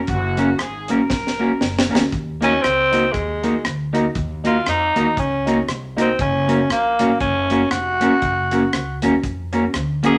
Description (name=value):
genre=ska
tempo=118 BPM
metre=4/4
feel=swing 58% on 8ths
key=Eb dorian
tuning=A4 = 440 Hz
part: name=upright bass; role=bass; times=0.0-10.2 s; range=F1 to F2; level=-29 LUFS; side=equal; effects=none
part: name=warm horn section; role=melody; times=0.1-1.9 s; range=Gb4 to Bb4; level=-29 LUFS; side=equal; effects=none
part: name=deep reggae drum kit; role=drums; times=0.1-10.1 s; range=hi-hat, kick drum, rim click, snare drum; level=-26 LUFS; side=equal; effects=none
part: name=electric guitar at the edge of break-up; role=accompaniment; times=0.4-10.1 s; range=Bb3 to Gb4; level=-23 LUFS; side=equal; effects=none
part: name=dark upright piano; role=stabs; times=0.4-10.2 s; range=Db4 to Bb4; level=-27 LUFS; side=equal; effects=none
part: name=breathy tenor saxophone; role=melody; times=2.4-10.2 s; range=Ab3 to Ab4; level=-21 LUFS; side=equal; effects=none
room=wet studio reverb, RT60 0.7 s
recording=none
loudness=-19 LUFS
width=mono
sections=0.0-2.1 A section; 2.1-10.2 B section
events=drum fill 1.1-2.1; tenor saxophone solo 2.1-10.2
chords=0.0 Gb; 2.1 Ebm; 6.2 Gb